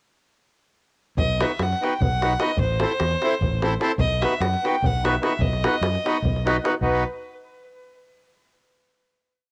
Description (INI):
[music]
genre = balkan folk, Balkan wedding band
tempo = 298 BPM (eighths)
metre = 7/8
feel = straight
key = B phrygian dominant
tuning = A4 = 441 Hz
[part]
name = rich fiddle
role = melody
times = 1.2-7.0 s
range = B4 to G5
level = -29 LUFS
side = equal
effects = cassette tape, tape echo
[part]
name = overdriven fingered electric bass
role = bass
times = 1.2-7.0 s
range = A1 to F#2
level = -28 LUFS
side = equal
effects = none
[part]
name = davul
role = percussion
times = 1.2-7.0 s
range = none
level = -28 LUFS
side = equal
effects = none
[part]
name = accordion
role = accompaniment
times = 1.4-7.0 s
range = B3 to C5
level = -27 LUFS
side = equal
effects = cassette tape, plate reverb
[sound]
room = moderate booth ambience, RT60 0.3 s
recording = home recording on cassette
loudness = -23 LUFS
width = mono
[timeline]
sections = 1.2-6.8 A section; 6.8-8.2 final chord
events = none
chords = 1.2 B; 2.6 Am; 4.0 B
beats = | 1.18 1.38 1.58 1.78 1.98 2.18 2.38 | 2.58 2.79 2.99 3.19 3.39 3.59 3.79 | 4.00 4.20 4.40 4.60 4.80 5.01 5.21 | 5.41 5.61 5.81 6.01 6.22 6.42 6.62 | 6.82 7.02